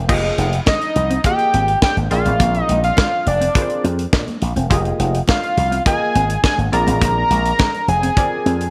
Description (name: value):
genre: early-eighties boogie funk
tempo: 104 BPM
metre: 4/4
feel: straight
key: F dorian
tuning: A4 = 441 Hz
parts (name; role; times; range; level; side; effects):
- mellow electric guitar; riff; 0.0-8.5 s; Ab3 to F4; -29 LUFS; equal; subtle chorus
- slap bass with an envelope filter; bass; 0.0-8.7 s; E1 to Bb2; -22 LUFS; equal; none
- funky polysynth comp; accompaniment; 0.1-8.6 s; Bb3 to Eb5; -26 LUFS; equal; chorus
- tight funk drum kit; drums; 0.1-8.7 s; crash cymbal, hi-hat, kick drum, snare drum; -21 LUFS; equal; none
- congas; percussion; 0.4-8.6 s; none; -33 LUFS; equal; none
- fat analog lead; melody; 0.7-8.7 s; D5 to Bb5; -21 LUFS; equal; slapback echo
room: light reverb, studio ambience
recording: none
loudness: -17 LUFS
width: mono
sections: 0.1-8.7 A section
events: none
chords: 0.1 Fm11; 2.1 Bb9; 4.7 Fm11; 6.7 Bb9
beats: | 0.09 0.67 1.25 1.82 | 2.40 2.98 3.55 4.13 | 4.71 5.28 5.86 6.44 | 7.01 7.59 8.17